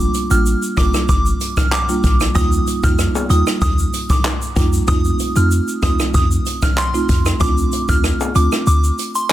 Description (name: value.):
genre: dancehall.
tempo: 95 BPM.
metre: 4/4.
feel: straight.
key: G minor.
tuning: A4 = 440 Hz.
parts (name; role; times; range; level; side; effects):
soft synth bell; melody; 0.0-9.3 s; C6 to F6; -22 LUFS; right 1 dB; chorus, tape echo.
marimba with medium mallets; accompaniment; 0.0-8.6 s; G3 to F4; -22 LUFS; right 2 dB; none.
clean 808-style bass; bass; 0.0-8.9 s; G1 to F2; -17 LUFS; equal; none.
jazz brush drum kit; drums; 0.0-9.3 s; handclaps, hi-hat, kick drum, rim click, shaker; -18 LUFS; equal; soft clipping on snare.
egg shaker and timbales; percussion; 0.1-9.3 s; none; -30 LUFS; left 8 dB; none.
room: small room ambience.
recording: dense, heavily limited modern master.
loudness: -14 LUFS.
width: side -13 dB against mid.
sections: 0.0-9.3 A section.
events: kick muted 8.7-9.3.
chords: 0.0 Gm7; 2.4 Ebadd9; 4.9 F7; 7.4 Dm7.